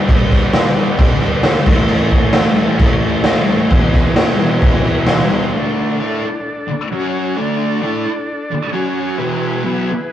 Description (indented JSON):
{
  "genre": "garage rock duo or trio",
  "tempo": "132 BPM",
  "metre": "4/4",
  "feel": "straight",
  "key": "unclear",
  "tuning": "A4 = 440 Hz",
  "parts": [
    { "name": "combo organ", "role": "sustained chords", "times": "0.0-10.1 s", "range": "C#4 to E5", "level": "-24 LUFS", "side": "left 1 dB", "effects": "none" },
    { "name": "thick fuzz guitar", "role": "riff", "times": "0.0-9.9 s", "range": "E2 to A4", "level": "-18 LUFS", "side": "right 1 dB", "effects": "distortion" },
    { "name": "raw garage drum kit", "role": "drums", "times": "0.1-5.4 s", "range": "crash cymbal, kick drum, snare drum", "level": "-13 LUFS", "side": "equal", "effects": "none" }
  ],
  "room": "moderate stone room reverb, RT60 1.3 s",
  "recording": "rough rehearsal-room recording, warm saturation, cassette tape",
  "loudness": "-13 LUFS",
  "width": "side -11 dB against mid",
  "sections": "0.0-5.5 A section; 5.5-10.1 B section",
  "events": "none",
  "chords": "0.0 G; 1.7 A; 3.7 E; 5.5 D5; 6.9 F#5; 7.4 D5; 8.7 F#5; 9.2 E"
}